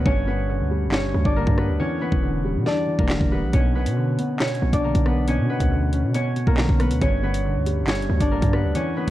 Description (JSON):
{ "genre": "hip hop, drill", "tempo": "138 BPM", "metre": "4/4", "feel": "half-time", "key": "unclear", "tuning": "A4 = 440 Hz", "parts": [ { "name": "concert harp", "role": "melody", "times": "0.0-9.1 s", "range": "A#3 to D5", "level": "-26 LUFS", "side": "left 2 dB", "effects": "none" }, { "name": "felt-muted upright piano", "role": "accompaniment", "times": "0.0-9.1 s", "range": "E2 to C#4", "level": "-26 LUFS", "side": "right 1 dB", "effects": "none" }, { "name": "hard-hitting 808-style bass", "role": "bass", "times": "0.0-9.1 s", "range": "E1 to B2", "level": "-24 LUFS", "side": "equal", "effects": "none" }, { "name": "drill drum kit", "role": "drums", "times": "0.1-9.1 s", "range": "handclaps, hi-hat, kick drum, rim click, snare drum", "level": "-23 LUFS", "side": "equal", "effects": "none" } ], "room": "small room ambience", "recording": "worn, warbling old tape, cassette tape, warbly pitch drift", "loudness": "-19 LUFS", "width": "side -14 dB against mid", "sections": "0.0-9.1 A section", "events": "break 0.0-3.5", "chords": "0.1 G; 1.8 Em7; 3.5 Bmadd9; 7.0 G" }